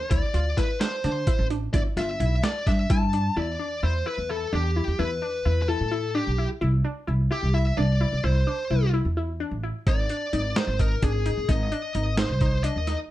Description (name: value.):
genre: progressive instrumental, band music in an uneven meter.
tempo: 258 BPM (eighths).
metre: 7/8.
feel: straight.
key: unclear.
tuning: A4 = 440 Hz.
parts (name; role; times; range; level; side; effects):
high-gain lead guitar; melody; 0.0-13.0 s; G4 to A5; -29 LUFS; left 1 dB; distortion.
glassy wavetable pluck; arpeggios; 0.0-13.0 s; D4 to F4; -32 LUFS; left 2 dB; chorus.
upright bass; bass; 0.1-12.9 s; G1 to D3; -25 LUFS; equal; none.
boom bap sampler-style drum kit; drums; 0.1-3.2, 9.9-13.0 s; hi-hat, kick drum, snare drum; -25 LUFS; equal; none.
room: light reverb.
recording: dark, warm production.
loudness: -22 LUFS.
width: side -14 dB against mid.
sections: 0.0-3.4 A section; 3.4-13.1 B section.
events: lead electric guitar solo 0.0-3.4.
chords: 0.1 D7(no3); 1.7 G5; 3.4 Em7; 6.6 C; 9.9 Ab.